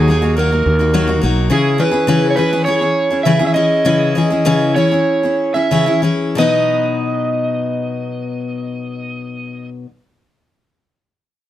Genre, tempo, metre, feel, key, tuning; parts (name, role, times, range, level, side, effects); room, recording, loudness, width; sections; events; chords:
pop; 89-105 BPM; 4/4; straight; B major; A4 = 441 Hz
overdriven slide guitar; melody; 0.0-9.7 s; G#4 to E5; -18 LUFS; right 3 dB
picked steel-string acoustic guitar; accompaniment; 0.0-9.9 s; B2 to B4; -16 LUFS; left 3 dB
fretless electric bass; bass; 0.0-1.5 s; B1 to D#2; -15 LUFS; right 1 dB
light reverb; -13 LUFS; side -12 dB against mid
0.0-6.4 A section; 6.4-9.1 B section
slowing down 1.5-6.4
0.0 D#m; 1.5 C#m; 6.4 B